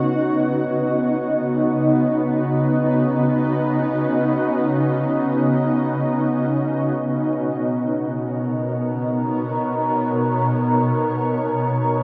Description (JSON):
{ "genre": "ambient", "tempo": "free time", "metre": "none", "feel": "none", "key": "unclear", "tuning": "A4 = 440 Hz", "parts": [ { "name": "shimmering ambient pad", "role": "solo", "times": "0.0-12.0 s", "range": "Cb3 to Db5", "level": "-20 LUFS", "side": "equal", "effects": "chorus, built-in reverb" } ], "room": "wet huge ambient reverb, RT60 8.2 s", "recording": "worn, warbling old tape, cassette tape, warbly pitch drift", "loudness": "-21 LUFS", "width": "mono", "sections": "0.0-12.0 A section", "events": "none", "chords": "0.0 Db7sus4; 6.8 Cbmaj7" }